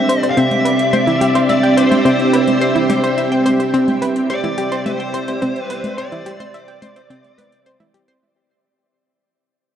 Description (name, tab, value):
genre	ambient, sequencer-driven space music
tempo	107 BPM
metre	4/4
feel	straight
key	unclear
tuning	A4 = 441 Hz
part	smooth overdriven lead guitar	melody	0.0-7.6 s	C5 to F5	-21 LUFS	left 1 dB	shimmer reverb, tape echo
part	string machine, full ensemble	sustained chords	0.0-8.2 s	C4 to E5	-16 LUFS	right 1 dB	ensemble chorus, shimmer reverb
part	analog pluck	riff	0.0-8.2 s	C4 to G5	-20 LUFS	left 1 dB	chorus, shimmer reverb, tape echo
part	electronic hi-hat and congas	percussion	0.1-8.2 s	none	-26 LUFS	equal	overdrive, tape echo
room	wet huge ambient reverb, RT60 7.3 s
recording	dark, warm production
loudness	-13 LUFS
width	side -9 dB against mid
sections	0.0-8.2 A section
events	fade-out 2.2-8.2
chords	0.0 Cadd9